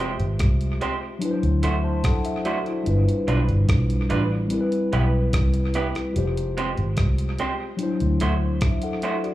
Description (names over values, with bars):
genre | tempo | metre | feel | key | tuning
lovers rock reggae | 73 BPM | 4/4 | straight | unclear | A4 = 440 Hz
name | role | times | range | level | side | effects
mellow tine electric piano | accompaniment | 0.0-9.3 s | F#3 to C6 | -26 LUFS | left 2 dB | phaser
electric guitar through a small old amp | stabs | 0.0-9.1 s | G3 to C5 | -29 LUFS | right 4 dB | slapback echo
vintage muted fingered electric bass | bass | 0.0-8.6 s | F1 to D2 | -22 LUFS | equal | none
crisp 8-bit digital drum machine | drums | 0.0-9.3 s | hi-hat, kick drum, rim click | -26 LUFS | equal | dub echo
room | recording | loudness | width
light reverb | live gig heard through the venue's PA, club reverb | -20 LUFS | side -15 dB against mid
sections
0.0-9.3 A section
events
none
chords
0.0 Fmadd9; 1.2 D9; 2.9 G7; 4.5 Cmaj7; 6.2 Fmadd9; 7.8 D9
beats
0.40 1.23 2.05 | 2.87 3.69 4.51 5.33 | 6.15 6.97 7.80 8.62